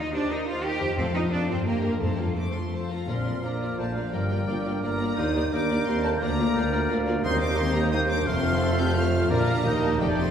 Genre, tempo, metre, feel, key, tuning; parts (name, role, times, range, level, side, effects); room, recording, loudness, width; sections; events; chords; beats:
classical, dramatic, fast romantic movement for symphony orchestra; 174 BPM; 3/4; rubato; Bb major; A4 = 440 Hz
rich symphonic violin section; melody; 0.0-10.3 s; C5 to G6; -35 LUFS; left 2 dB
warm symphonic violin section; second line; 0.0-10.3 s; G4 to F5; -36 LUFS; left 1 dB
warm symphonic viola section; accompaniment; 0.0-10.3 s; G3 to Bb4; -33 LUFS; right 1 dB
concert harp; arpeggios; 0.0-10.3 s; F2 to A5; -33 LUFS; left 4 dB
clear symphonic cello section; bass; 0.0-10.3 s; D2 to G4; -32 LUFS; right 2 dB
warm symphonic double bass section; bass; 0.0-10.3 s; F1 to G2; -31 LUFS; right 1 dB
timpani; percussion; 1.0-3.6, 9.3-9.6 s; F2 to Bb2; -32 LUFS; left 1 dB
mellow French horn section; sustained chords; 2.7-10.3 s; F3 to G4; -30 LUFS; left 2 dB
clear clarinet; second line; 3.1-10.3 s; C5 to Eb5; -35 LUFS; equal
flute section; second line; 3.1-10.3 s; F6 to G6; -35 LUFS; equal
warm bassoon; accompaniment; 3.1-10.3 s; F3 to Bb3; -32 LUFS; right 3 dB
warm tuba; bass; 3.1-10.3 s; F1 to Eb2; -32 LUFS; right 2 dB
clear oboe; second line; 3.4-10.3 s; A4 to G5; -36 LUFS; right 1 dB
wet scoring stage reverb, RT60 1.5 s; heard from further back in the room; -23 LUFS; side -8 dB against mid
0.0-3.1 A section; 3.1-10.3 B section
0.0 Cm7/Eb; 1.0 F; 1.7 Eb/G; 2.0 F; 3.1 Bb; 4.1 Gm7; 5.2 Ebmaj7; 6.2 Bb/D; 7.2 Cm7/Eb; 8.3 F; 9.3 Bb; 9.7 Eb
0.30 0.64 | 0.98 1.32 1.66 | 2.01 2.37 2.73 | 3.09 3.44 3.79 | 4.14 4.49 4.84 | 5.19 5.53 5.88 | 6.22 6.56 6.91 | 7.25 7.59 7.93 | 8.28 8.62 8.97 | 9.31 9.66 10.01